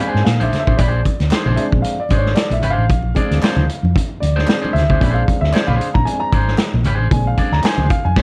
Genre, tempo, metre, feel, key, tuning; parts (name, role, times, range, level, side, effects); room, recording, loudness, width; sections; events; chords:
funk; 114 BPM; 4/4; swing 56% on 16ths; Bb mixolydian; A4 = 442 Hz
electric guitar at the edge of break-up; accompaniment; 0.0-8.2 s; D4 to D5; -26 LUFS; equal
warm upright piano; stabs; 0.0-8.2 s; Ab3 to Bb5; -24 LUFS; equal
hollow-body short-scale fingered electric bass; bass; 0.1-8.2 s; Ab1 to Bb2; -20 LUFS; equal
vintage drum kit; drums; 0.2-8.2 s; crash cymbal, hi-hat, kick drum, snare drum; -21 LUFS; equal
congas; percussion; 0.3-8.2 s; -29 LUFS; equal
group handclap; percussion; 1.3-7.8 s; -36 LUFS; equal
light reverb; cassette tape; -16 LUFS; mono
0.0-8.2 A section
upright piano solo 0.0-8.2
0.0 Bb9